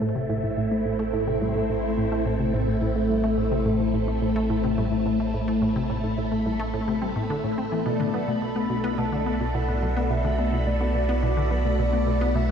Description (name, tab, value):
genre	ambient, sequencer-driven space music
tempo	107 BPM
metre	4/4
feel	straight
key	A dorian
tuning	A4 = 439 Hz
part	phased string machine	sustained chords	0.0-12.5 s	A2 to F#4	-27 LUFS	equal	ensemble chorus, phaser
part	soft round pluck	arpeggios	0.0-12.5 s	A2 to A4	-31 LUFS	moving between left 7 dB and equal	chorus, auto-pan, vintage 12-bit sampler grit, tape echo
part	resonant blip pluck	riff	0.0-12.5 s	A2 to C4	-28 LUFS	equal	chorus, tape echo
part	round analog bass	bass	0.0-12.5 s	A1 to B1	-29 LUFS	right 1 dB	none
part	bubbling stepped-filter texture	texture	0.0-12.5 s	A4 to B5	-38 LUFS	right 2 dB	chorus, built-in reverb
part	mellow horn-like synth lead	melody	7.9-12.5 s	D5 to B5	-31 LUFS	equal	chorus, tape echo
room	wet scoring stage reverb, RT60 2.0 s, digital ambience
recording	dark, warm production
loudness	-22 LUFS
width	side -7 dB against mid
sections	0.0-12.5 A section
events	none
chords	0.0 Amadd9; 7.9 Bm7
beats	0.01 0.57 | 1.14 1.70 2.26 2.82 | 3.38 3.94 4.50 5.06 | 5.62 6.18 6.74 7.30 | 7.87 8.43 8.99 9.55 | 10.11 10.67 11.23 11.79 | 12.35